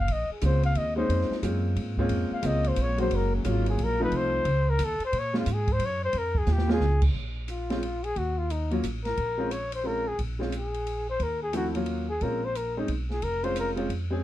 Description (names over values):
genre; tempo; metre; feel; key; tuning
jazz, small-group swing and bop; 178 BPM; 3/4; swing 64% on 8ths; Bb minor; A4 = 440 Hz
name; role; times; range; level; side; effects
breathy flugelhorn; melody; 0.0-13.7 s; Db4 to F5; -29 LUFS; left 2 dB; none
upright bass; bass; 0.0-14.2 s; F1 to Bb2; -28 LUFS; right 1 dB; none
open jazz drum kit; drums; 0.1-14.0 s; crash cymbal, hi-hat, kick drum, ride cymbal, snare drum; -35 LUFS; right 1 dB; none
clear grand piano; accompaniment; 0.4-14.2 s; F3 to Ab4; -30 LUFS; equal; none
room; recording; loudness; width
little or no reverb; dark, warm production; -25 LUFS; side -14 dB against mid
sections
0.0-7.1 A section; 7.1-14.2 B section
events
flugelhorn solo 0.0-7.1; drum fill 6.5-6.8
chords
0.1 Bbm7; 3.1 Gbmaj7; 4.1 F7; 5.1 Bbm7; 7.1 Bb5; 8.2 Ebm; 9.2 Bbm7; 11.2 Ebm7; 12.2 Bbm7